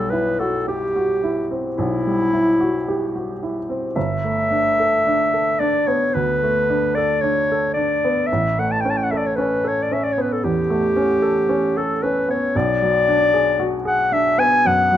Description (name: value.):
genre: classical, impressionist duo for clarinet and grand piano.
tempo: 56 BPM.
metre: 4/4.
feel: rubato.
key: unclear.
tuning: A4 = 440 Hz.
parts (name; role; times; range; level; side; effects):
dark clarinet; melody; 0.0-15.0 s; E4 to A5; -18 LUFS; left 1 dB; none.
warm baby grand piano; accompaniment; 0.0-15.0 s; G1 to A4; -22 LUFS; right 1 dB; none.
room: light reverb.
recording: dark, warm production.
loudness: -17 LUFS.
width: side -11 dB against mid.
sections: 0.0-15.0 A section.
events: none.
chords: 0.0 Cmaj7#11/B; 4.0 G69; 8.3 A9; 12.5 Bm6.